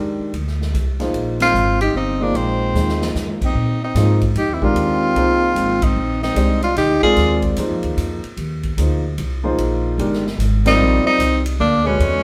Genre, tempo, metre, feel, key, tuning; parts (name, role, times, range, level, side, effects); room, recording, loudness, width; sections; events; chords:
modal jazz; 149 BPM; 3/4; swing 64% on 8ths; Bb mixolydian from 3.6 s; A4 = 440 Hz
warm upright piano; accompaniment; 0.0-12.2 s; D3 to Eb5; -24 LUFS; equal
upright bass; bass; 0.0-12.2 s; G1 to Bb2; -23 LUFS; equal
swinging big-band drum kit; drums; 0.3-12.1 s; crash cymbal, hi-hat, kick drum, ride cymbal, snare drum; -30 LUFS; equal
clear tenor saxophone; melody; 1.4-7.4, 10.7-12.2 s; C4 to Ab4; -21 LUFS; equal
mellow alto saxophone; second line; 1.4-7.4, 10.7-12.2 s; Ab3 to F4; -25 LUFS; equal
moderate stone room reverb, RT60 1.0 s; band playing live in one room; -18 LUFS; mono
0.0-3.6 A section; 3.6-12.2 B section
band accent 1.3, 5.8, 10.6; drum fill 2.7-3.1
0.0 Bb13sus4; 3.6 Bb9sus4